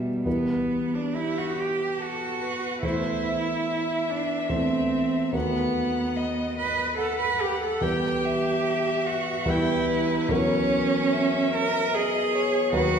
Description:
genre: classical, slow romantic movement for piano trio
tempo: 72 BPM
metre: 3/4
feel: rubato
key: E minor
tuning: A4 = 439 Hz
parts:
  - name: clear cello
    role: second line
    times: 0.0-13.0 s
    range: G3 to B4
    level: -25 LUFS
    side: right 4 dB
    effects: none
  - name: warm concert grand piano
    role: accompaniment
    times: 0.0-13.0 s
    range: D#2 to C5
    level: -28 LUFS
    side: equal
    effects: none
  - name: dark violin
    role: melody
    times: 1.2-13.0 s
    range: G4 to G5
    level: -30 LUFS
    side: left 5 dB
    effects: none
room: wet recital hall reverb, RT60 1.8 s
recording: recorded in a church or concert hall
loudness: -23 LUFS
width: side -7 dB against mid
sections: 0.3-13.0 A section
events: none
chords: 0.3 Em; 2.8 Am/E; 5.3 B7/D#; 7.8 Em; 10.3 F#7/E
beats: | 0.26 1.15 2.00 | 2.83 3.67 4.51 | 5.34 6.17 6.99 | 7.82 8.65 9.47 | 10.30 11.13 11.93 | 12.74

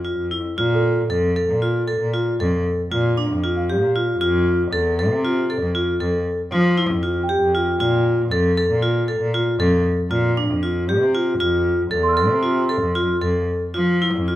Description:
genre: contemporary instrumental, chamber music in an uneven meter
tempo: 116 BPM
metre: 7/4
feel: straight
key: unclear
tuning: A4 = 442 Hz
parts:
  - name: vibraphone with hard mallets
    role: arpeggios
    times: 0.0-14.4 s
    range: D4 to A4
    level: -20 LUFS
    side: left 1 dB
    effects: none
  - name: rich cello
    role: bass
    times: 0.0-14.4 s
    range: E2 to F3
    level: -22 LUFS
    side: equal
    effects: none
  - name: large celesta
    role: texture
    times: 0.7-13.3 s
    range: A4 to F6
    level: -25 LUFS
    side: right 5 dB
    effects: none
room: light reverb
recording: close, detailed microphones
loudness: -17 LUFS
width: side -14 dB against mid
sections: 0.6-14.4 A section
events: none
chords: 0.0 F5; 0.6 Bbmaj7(no3); 4.2 Fmaj9; 7.8 Bbmaj7(no3); 11.4 Fmaj7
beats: 0.05 | 0.58 1.10 1.62 2.14 2.66 3.18 3.70 | 4.21 4.73 5.24 5.75 6.26 6.77 7.29 | 7.80 8.32 8.83 9.34 9.85 10.37 10.89 | 11.40 11.92 12.44 12.96 13.49 14.02

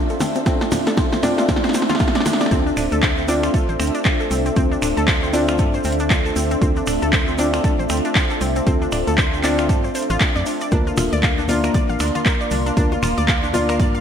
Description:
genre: deep house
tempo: 117 BPM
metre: 4/4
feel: swing 59% on 16ths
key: D minor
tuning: A4 = 442 Hz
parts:
  - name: deep dark ambient pad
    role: sustained chords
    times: 0.0-14.0 s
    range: A3 to D5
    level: -28 LUFS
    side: equal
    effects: chorus, built-in reverb, sidechain pumping
  - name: analog pluck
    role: arpeggios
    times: 0.0-14.0 s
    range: C4 to F5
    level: -26 LUFS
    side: left 2 dB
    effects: chorus, sidechain pumping, digital delay
  - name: felt-muted upright piano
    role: stabs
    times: 0.0-14.0 s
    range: Bb3 to D5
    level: -24 LUFS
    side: left 1 dB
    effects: sidechain pumping, ping-pong delay
  - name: ethereal airy pad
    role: texture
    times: 0.0-14.0 s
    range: D4 to C6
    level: -26 LUFS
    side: equal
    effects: ensemble chorus, built-in reverb, sidechain pumping
  - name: deep house drum kit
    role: drums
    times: 0.1-13.9 s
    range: finger snaps, handclaps, hi-hat, snare drum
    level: -22 LUFS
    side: equal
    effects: overdrive, gated reverb
  - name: bongos and congas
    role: percussion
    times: 0.1-2.4, 10.7-14.0 s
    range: none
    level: -30 LUFS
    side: left 4 dB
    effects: none
  - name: tube shaker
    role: percussion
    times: 0.1-14.0 s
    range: none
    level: -35 LUFS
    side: right 5 dB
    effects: none
  - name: electronic kick drum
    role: drums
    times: 0.5-13.9 s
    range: none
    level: -20 LUFS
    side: equal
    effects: overdrive
  - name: organ-like FM bass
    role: bass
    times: 2.5-14.0 s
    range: D1 to G2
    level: -24 LUFS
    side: equal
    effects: sidechain pumping
room: moderate lush hall reverb, RT60 1.9 s, digital ambience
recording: bright 1980s-style digital production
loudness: -16 LUFS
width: side -8 dB against mid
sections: 0.0-2.5 A section; 2.5-14.0 B section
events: build-up 0.0-2.5; drum fill 0.0-2.5; filter sweep on synth arpeggio sound 0.0-2.5; drop 2.5-14.0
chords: 0.0 Dm7; 10.7 Bb/D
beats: | 0.46 0.97 1.49 2.00 | 2.51 3.03 3.54 4.05 | 4.57 5.08 5.59 6.10 | 6.62 7.13 7.64 8.15 | 8.67 9.18 9.69 10.21 | 10.72 11.23 11.74 12.26 | 12.77 13.28 13.80

